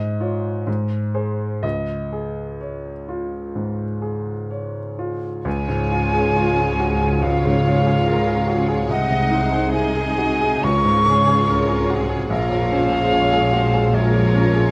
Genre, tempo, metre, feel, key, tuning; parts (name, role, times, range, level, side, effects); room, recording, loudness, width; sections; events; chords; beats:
classical, romantic movement for piano and orchestra; 60-74 BPM; 4/4; rubato; Db major; A4 = 445 Hz
bright grand piano; melody; 0.0-14.7 s; Bb1 to Eb5; -24 LUFS; equal
warm symphonic double bass section; bass; 5.4-14.7 s; Bb1 to Db2; -27 LUFS; equal
warm symphonic violin section; melody; 5.5-14.7 s; Db5 to Eb5; -34 LUFS; equal
silver concert flute; second line; 5.5-14.7 s; Db5 to Db6; -24 LUFS; equal
warm symphonic viola section; accompaniment; 5.5-14.7 s; Ab3 to F4; -27 LUFS; equal
dark symphonic cello section; bass; 5.5-14.7 s; Bb2 to Db3; -29 LUFS; equal
dark symphonic violin section; second line; 7.2-14.7 s; Ab4 to Eb5; -32 LUFS; equal
moderate recital hall reverb, RT60 1.3 s; close, detailed microphones; -20 LUFS; mono
0.0-5.5 A section; 5.5-14.7 B section
0.0 Db/Ab; 0.7 Ab; 1.6 Db; 8.9 Ab7/C; 10.6 Db; 12.3 Bbm7
0.67 | 1.64 2.62 3.56 4.51 | 5.46 6.36 7.23 8.07 | 8.90 9.73 10.64 11.49 | 12.31 13.13 13.94